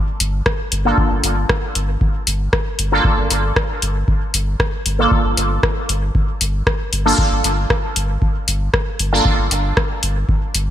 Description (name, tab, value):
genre	dub techno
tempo	116 BPM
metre	4/4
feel	straight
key	G minor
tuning	A4 = 440 Hz
part	soft dub sub bass	bass	0.2-10.7 s	G1	-20 LUFS	equal	sidechain pumping
part	deep house drum kit	drums	0.2-10.7 s	hi-hat, rim click	-21 LUFS	left 1 dB	overdrive
part	electronic kick drum	drums	0.5-10.4 s	none	-19 LUFS	equal	none
part	resonant sweep polysynth	stabs	0.9-9.3 s	Bb3 to A4	-20 LUFS	equal	chorus, phaser, sidechain pumping, dub echo
room	light reverb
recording	bright 1980s-style digital production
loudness	-15 LUFS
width	side -11 dB against mid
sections	0.0-10.7 A section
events	none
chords	none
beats	0.46 0.98 1.50 | 2.01 2.53 3.05 3.56 | 4.08 4.60 5.12 5.63 | 6.15 6.67 7.18 7.70 | 8.22 8.74 9.25 9.77 | 10.29